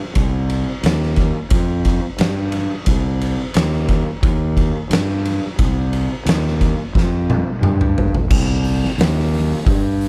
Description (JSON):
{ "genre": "stoner and doom metal", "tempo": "88 BPM", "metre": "4/4", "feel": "straight", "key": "C minor", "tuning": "A4 = 441 Hz", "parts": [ { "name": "fuzz fingered electric bass", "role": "bass", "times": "0.2-10.1 s", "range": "C2 to G2", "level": "-21 LUFS", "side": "equal", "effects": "overdrive" }, { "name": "oversized low-tuned drum kit", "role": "drums", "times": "0.2-10.1 s", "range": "crash cymbal, hi-hat, kick drum, ride cymbal, snare drum, toms", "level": "-21 LUFS", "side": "equal", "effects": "none" } ], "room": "little or no reverb", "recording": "none", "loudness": "-18 LUFS", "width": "mono", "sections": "0.0-8.3 A section; 8.3-10.1 B section", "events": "drum fill 7.0-8.3", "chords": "none" }